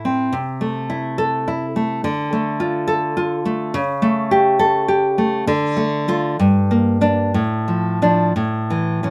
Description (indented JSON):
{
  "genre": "romantic piece for solo classical guitar",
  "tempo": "59-72 BPM (dotted quarters)",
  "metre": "6/8",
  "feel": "rubato",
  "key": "D minor",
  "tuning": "A4 = 440 Hz",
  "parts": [
    { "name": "nylon-string guitar", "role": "solo", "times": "0.0-9.1 s", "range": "G2 to A4", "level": "-19 LUFS", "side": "equal", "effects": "none" }
  ],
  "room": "moderate studio ambience, RT60 0.5 s",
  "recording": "none",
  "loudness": "-19 LUFS",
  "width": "mono",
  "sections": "0.0-9.1 A section",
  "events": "none",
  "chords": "0.3 Am/C; 2.0 Dm; 3.7 A7/C#; 5.5 Dm; 6.4 Gm; 7.3 Dm/A; 8.4 A5"
}